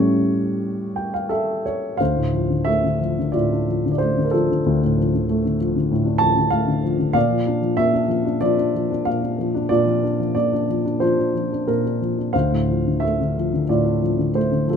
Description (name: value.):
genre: classical, lyrical solo piano.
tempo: 93 BPM.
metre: 4/4.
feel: uneven beats, rubato.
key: D minor.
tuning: A4 = 440 Hz.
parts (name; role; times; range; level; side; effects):
dark baby grand piano; solo; 0.0-14.8 s; D2 to A5; -18 LUFS; equal; none.
room: moderate studio reverb, RT60 0.6 s.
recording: minimal, uncompressed stereo recording.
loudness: -18 LUFS.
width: side -7 dB against mid.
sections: 0.0-2.0 A section; 2.0-14.8 B section.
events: grand piano fill 0.6-2.0.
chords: 0.0 A7; 2.0 Dm7; 7.2 Bbadd9; 12.3 Dm7.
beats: 0.61 1.32 | 2.00 2.67 3.33 3.99 | 4.65 5.28 5.90 6.52 | 7.16 7.79 8.42 9.05 | 9.70 10.36 11.01 11.67 | 12.34 13.02 13.67 14.33.